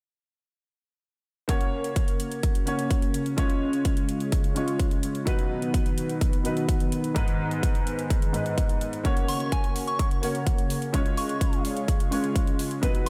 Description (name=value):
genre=EDM, festival progressive house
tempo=127 BPM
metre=4/4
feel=straight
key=F# major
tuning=A4 = 440 Hz
part: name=warm baby grand piano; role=accompaniment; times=1.5-13.1 s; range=G#2 to C#5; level=-32 LUFS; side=equal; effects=analog chorus, sidechain pumping, delay
part: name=lush unison pad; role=sustained chords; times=1.5-13.1 s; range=C#3 to C#5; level=-34 LUFS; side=equal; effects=chorus, sidechain pumping
part: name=electronic hi-hat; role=drums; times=1.5-13.1 s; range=none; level=-41 LUFS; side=equal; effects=overdrive, studio reverb
part: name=electronic kick drum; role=drums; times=1.5-12.9 s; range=none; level=-27 LUFS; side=equal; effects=overdrive, studio reverb
part: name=soft synth bell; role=melody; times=9.3-13.1 s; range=G#5 to C#6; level=-35 LUFS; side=equal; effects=chorus, phaser, tape echo
room=moderate lush hall reverb, RT60 1.9 s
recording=dreamy mix soaked in reverb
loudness=-26 LUFS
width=mono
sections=1.5-13.1 A section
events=filter sweep on analog synth pad 1.5-13.1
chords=1.5 F#; 3.4 C#; 5.3 B; 7.2 G#m; 9.0 F#; 10.9 C#